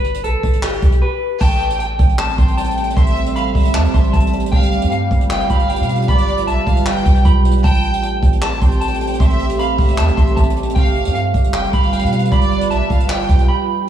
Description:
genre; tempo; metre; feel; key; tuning
hip hop, trap; 154 BPM; 4/4; half-time; A minor; A4 = 440 Hz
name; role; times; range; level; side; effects
electric guitar through a small old amp; melody; 0.0-13.9 s; G4 to C6; -22 LUFS; right 1 dB; low-pass filter, analog delay
clean 808-style bass; bass; 0.0-13.5 s; F1 to B2; -18 LUFS; equal; none
jazz brush drum kit; drums; 0.0-13.5 s; crash cymbal, handclaps, hi-hat, kick drum; -17 LUFS; right 1 dB; none
warm studio violin section; second line; 1.4-13.5 s; D5 to A5; -24 LUFS; left 1 dB; analog delay
deep dark ambient pad; sustained chords; 2.1-13.8 s; G3 to B4; -22 LUFS; right 3 dB; chorus, built-in reverb
room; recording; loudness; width
moderate lush hall reverb, RT60 1.7 s, small room ambience; dreamy mix soaked in reverb; -13 LUFS; side -10 dB against mid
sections
0.0-1.4 A section; 1.4-13.9 B section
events
break 1.0-1.4, 13.5-13.9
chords
0.0 G; 1.4 Am7; 4.5 G7; 7.6 Am7; 10.8 G7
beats
0.24 0.63 1.02 | 1.41 1.80 2.19 2.58 | 2.97 3.36 3.75 4.13 | 4.53 4.91 5.30 5.69 | 6.08 6.47 6.86 7.25 | 7.64 8.03 8.42 8.81 | 9.20 9.59 9.98 10.37 | 10.76 11.15 11.54 11.93 | 12.32 12.71 13.10 13.49

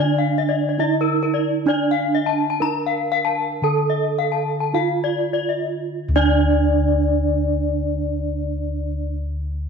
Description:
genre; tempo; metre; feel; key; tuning
Balinese gamelan; 47-75 BPM; 4/4; straight; D pelog; A4 = 440 Hz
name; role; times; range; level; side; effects
gamelan-type bronze metallophone; melody; 0.0-9.1 s; D4 to Bb4; -22 LUFS; right 11 dB; none
gamelan-type bronze metallophone; arpeggios; 0.0-9.1 s; Bb4 to Bb5; -23 LUFS; left 9 dB; none
gamelan-type bossed gongs; bass; 0.0-9.1 s; D2 to Eb4+35c; -23 LUFS; left 1 dB; none
room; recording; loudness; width
moderate echo chamber reverb, RT60 1.7 s, small room ambience; 1960s-style stereo with parts hard left and right; -18 LUFS; side -6 dB against mid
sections
0.0-6.0 A section; 6.0-9.7 B section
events
slowing down 0.0-6.0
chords
none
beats
0.79 | 1.67 2.61 3.63 4.75 | 5.97 7.25 8.54

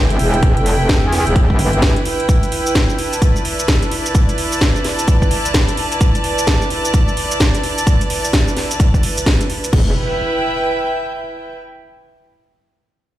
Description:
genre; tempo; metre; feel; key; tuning
bass house; 129 BPM; 4/4; swing 62% on 16ths; E minor; A4 = 440 Hz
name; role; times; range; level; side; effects
metallic wobble bass; bass; 0.0-1.9, 9.7-9.9 s; E1 to E2; -16 LUFS; equal; chorus, overdrive, sidechain pumping
clear studio string section; texture; 0.0-11.5 s; E4 to A5; -20 LUFS; right 1 dB; sidechain pumping
house drum kit; drums; 0.1-9.8 s; crash cymbal, hi-hat, shaker, snare drum; -20 LUFS; equal; none
electronic kick drum; drums; 0.4-9.8 s; none; -14 LUFS; equal; none
impact; sound effects; 9.7-11.6 s; none; -27 LUFS; equal; none
room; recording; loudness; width
light reverb; played on a big sound system in a bare room, large studio reverb; -13 LUFS; side -14 dB against mid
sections
0.0-9.7 A section; 9.7-11.6 B section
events
none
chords
0.0 Em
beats
| 0.43 0.89 1.36 1.82 | 2.29 2.75 3.22 3.68 | 4.15 4.61 5.08 5.54 | 6.01 6.47 6.94 7.40 | 7.87 8.33 8.80 9.26 | 9.73 10.19 10.66 11.12

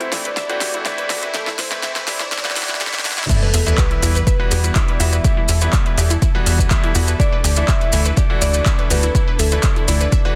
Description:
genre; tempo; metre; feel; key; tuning
progressive house; 123 BPM; 4/4; straight; E minor; A4 = 438 Hz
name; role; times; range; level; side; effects
soft octave-layered synth lead; melody; 0.0-10.4 s; A4 to E5; -30 LUFS; equal; chorus, sidechain pumping, dub echo
clear symphonic string section; sustained chords; 0.0-10.4 s; D3 to B4; -34 LUFS; equal; none
glassy wavetable pluck; arpeggios; 0.0-10.3 s; D4 to E5; -31 LUFS; equal; chorus, sidechain pumping, dub echo
bright grand piano; stabs; 0.0-10.4 s; E3 to F#4; -28 LUFS; equal; sidechain pumping, dub echo
deep house drum kit; drums; 0.0-10.2 s; crash cymbal, handclaps, hi-hat, snare drum; -26 LUFS; equal; overdrive, studio reverb
riser and sub drop; sound effects; 0.8-5.2 s; none; -29 LUFS; equal; none
tight sequencer bass; bass; 0.1-10.1 s; G1 to E2; -19 LUFS; equal; sidechain pumping
soft synth bell; second line; 3.3-10.4 s; A4 to E5; -32 LUFS; equal; none
electronic kick drum; drums; 3.3-10.2 s; none; -20 LUFS; equal; overdrive, studio reverb
maracas; percussion; 3.3-10.2 s; none; -27 LUFS; equal; none
room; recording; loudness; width
light reverb, digital ambience; dense, heavily limited modern master, high-pass filter; -17 LUFS; mono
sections
0.0-3.3 A section; 3.3-10.4 B section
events
build-up 0.0-3.3; drum fill 0.0-3.3; drop 3.3-10.4; impact 3.3-5.2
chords
0.0 Am; 3.3 Em; 7.2 Dsus2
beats
0.37 0.85 | 1.34 1.83 2.32 2.81 | 3.29 3.78 4.27 4.76 | 5.25 5.73 6.22 6.71 | 7.20 7.68 8.17 8.66 | 9.15 9.64 10.12

